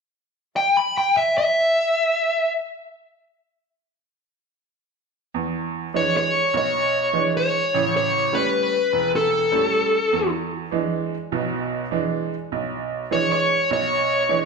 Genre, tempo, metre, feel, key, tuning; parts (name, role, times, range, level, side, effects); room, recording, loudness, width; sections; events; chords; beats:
blues; 100 BPM; 4/4; swing 66% on 8ths; E mixolydian; A4 = 440 Hz
dark smooth lead guitar; melody; 0.6-14.5 s; A4 to B5; -19 LUFS; left 1 dB; overdrive
bright upright piano; accompaniment; 5.3-14.5 s; E1 to D4; -24 LUFS; right 6 dB
wet large studio reverb, RT60 1.2 s; band playing live in one room; -19 LUFS; side -4 dB against mid
0.5-5.3 A section; 5.3-14.5 B section
0.5 N.C.; 5.3 E7; 7.7 A7; 10.1 E7
| 0.54 1.14 1.75 2.35 | 2.95 3.55 4.15 4.75 | 5.35 5.95 6.54 7.14 | 7.74 8.34 8.93 9.53 | 10.13 10.72 11.32 11.91 | 12.51 13.11 13.70 14.30